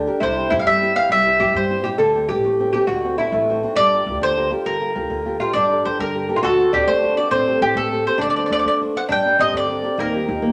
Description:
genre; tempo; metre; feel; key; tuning
italian folk, Italian serenade; 135 BPM (dotted quarters); 6/8; straight; G dorian, G harmonic minor from 5.5 s; A4 = 439 Hz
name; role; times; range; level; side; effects
oud; second line; 0.0-10.5 s; Bb3 to A4; -24 LUFS; equal; none
nylon-string guitar; accompaniment; 0.0-10.5 s; C3 to C5; -26 LUFS; equal; none
upright bass; bass; 0.0-10.5 s; G1 to Eb3; -34 LUFS; equal; none
mandolin; melody; 0.2-10.5 s; G4 to G5; -21 LUFS; equal; none
room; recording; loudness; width
wet studio reverb, RT60 0.7 s; none; -19 LUFS; mono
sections
0.0-5.5 A section; 5.5-10.5 B section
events
none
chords
0.2 C; 2.0 D7sus4; 2.9 D7; 3.8 Gm7; 5.5 Gmadd9; 6.4 D7; 7.3 Am7; 8.2 D7; 9.1 Gm; 10.0 Ebadd9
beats
| 0.21 0.66 | 1.10 1.54 | 1.99 2.44 | 2.88 3.32 | 3.76 4.20 | 4.64 5.09 | 5.54 5.98 | 6.42 6.87 | 7.31 7.75 | 8.20 8.64 | 9.09 9.53 | 9.98 10.43

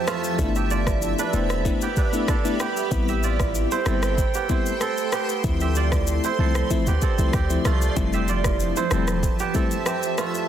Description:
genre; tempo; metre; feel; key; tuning
afrobeats; 95 BPM; 4/4; straight; unclear; A4 = 438 Hz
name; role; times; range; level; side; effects
granular cloud pad; sustained chords; 0.0-10.5 s; F3 to C6; -29 LUFS; equal; built-in reverb, sidechain pumping
kora; riff; 0.0-10.5 s; A3 to E5; -27 LUFS; right 9 dB; tape echo
afro-pop drum kit; drums; 0.1-10.5 s; kick drum, rim click, shaker; -26 LUFS; equal; none
FM electric piano with tremolo; accompaniment; 0.4-9.8 s; F3 to E4; -28 LUFS; left 6 dB; none
warm 808-style bass; bass; 0.4-9.3 s; E1 to D2; -24 LUFS; equal; none
room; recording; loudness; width
little or no reverb; dense, heavily limited modern master; -20 LUFS; side -10 dB against mid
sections
0.0-10.5 A section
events
none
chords
0.0 Fmaj7; 2.9 Am7; 5.4 Dm7; 8.0 Fmaj7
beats
| 0.39 1.02 1.65 2.28 | 2.92 3.55 4.18 4.81 | 5.44 6.07 6.71 7.34 | 7.97 8.60 9.23 9.86

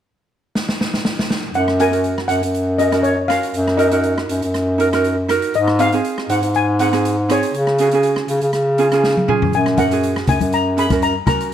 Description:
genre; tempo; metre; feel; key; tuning
calypso; 120 BPM; 4/4; swing 54% on 16ths; F# major; A4 = 440 Hz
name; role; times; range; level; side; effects
street-band drum kit; drums; 0.6-11.5 s; hi-hat, rim click, snare drum, toms; -25 LUFS; equal; none
clear bass clarinet; bass; 1.5-11.5 s; F#2 to C#3; -17 LUFS; equal; none
steel pan; melody; 1.6-11.5 s; C#5 to B5; -21 LUFS; left 4 dB; none
ukulele; accompaniment; 1.8-11.5 s; B#3 to A#4; -21 LUFS; right 6 dB; none
congas; percussion; 9.8-11.4 s; none; -20 LUFS; left 2 dB; none
room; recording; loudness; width
little or no reverb; dark, warm production; -15 LUFS; side -10 dB against mid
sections
0.0-1.5 A section; 1.5-11.5 B section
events
drum fill 0.5-1.5, 9.0-9.5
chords
0.0 N.C.; 1.5 F#; 3.5 D#m/F#; 5.5 G#7; 7.5 C#sus4; 8.5 C#; 9.5 F#add9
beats
0.05 0.55 1.05 | 1.54 2.04 2.54 3.04 | 3.54 4.04 4.54 5.04 | 5.54 6.04 6.54 7.04 | 7.54 8.03 8.53 9.03 | 9.53 10.03 10.52 11.02 | 11.52

